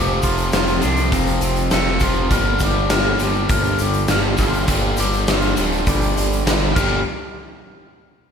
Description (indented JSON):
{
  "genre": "classic rock",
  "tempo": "101 BPM",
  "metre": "4/4",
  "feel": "straight",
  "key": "G minor",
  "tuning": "A4 = 442 Hz",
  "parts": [
    { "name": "clean lap steel guitar", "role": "melody", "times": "0.0-7.0 s", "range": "C4 to Bb4", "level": "-25 LUFS", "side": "left 3 dB", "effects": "slapback echo" },
    { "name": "picked steel-string acoustic guitar", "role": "accompaniment", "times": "0.0-7.0 s", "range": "G2 to A4", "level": "-30 LUFS", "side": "right 5 dB", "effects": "none" },
    { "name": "biting overdriven guitar", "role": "riff", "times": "0.0-7.0 s", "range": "F2 to G3", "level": "-25 LUFS", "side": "equal", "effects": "slapback echo" },
    { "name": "raw garage guitar", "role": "riff", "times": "0.0-7.0 s", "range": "F2 to G3", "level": "-24 LUFS", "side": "equal", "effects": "overdrive" },
    { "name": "smooth gliding synth bass", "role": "bass", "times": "0.0-7.0 s", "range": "D1 to C2", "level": "-22 LUFS", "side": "equal", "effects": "none" },
    { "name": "big rock drum kit", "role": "drums", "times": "0.2-6.9 s", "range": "crash cymbal, hi-hat, kick drum, snare drum", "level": "-20 LUFS", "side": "equal", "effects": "none" },
    { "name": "tube shaker", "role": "percussion", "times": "0.2-7.0 s", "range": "none", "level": "-37 LUFS", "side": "left 8 dB", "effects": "none" }
  ],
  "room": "light reverb",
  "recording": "none",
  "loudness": "-16 LUFS",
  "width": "side -7 dB against mid",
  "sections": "0.0-7.0 A section; 7.0-8.3 B section",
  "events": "none",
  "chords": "0.0 F; 2.3 Gm; 7.0 N.C."
}